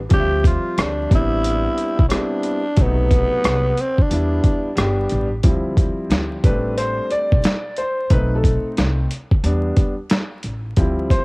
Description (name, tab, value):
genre	hip hop, jazz-hop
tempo	90 BPM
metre	4/4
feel	swing 64% on 16ths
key	D dorian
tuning	A4 = 440 Hz
part	upright bass	bass	0.0-11.2 s	G1 to E2	-22 LUFS	equal	none
part	growling tenor saxophone	melody	0.1-4.8 s	B3 to G4	-21 LUFS	equal	cassette tape
part	warm concert grand piano	accompaniment	0.1-11.2 s	C3 to E5	-23 LUFS	equal	cassette tape
part	dusty soul sampler-style drum kit	drums	0.1-11.2 s	hi-hat, kick drum, rim click, snare drum	-17 LUFS	equal	overdrive, cassette tape
room	small room ambience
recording	home recording on cassette, vinyl crackle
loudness	-16 LUFS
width	side -30 dB against mid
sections	0.0-5.4 A section; 5.4-11.2 B section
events	grand piano solo 5.4-11.2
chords	0.1 Dm11; 1.1 Am11; 2.8 B7b9; 4.1 Em7; 5.4 Dm11; 6.4 Am11; 8.1 B7b9; 9.4 Em7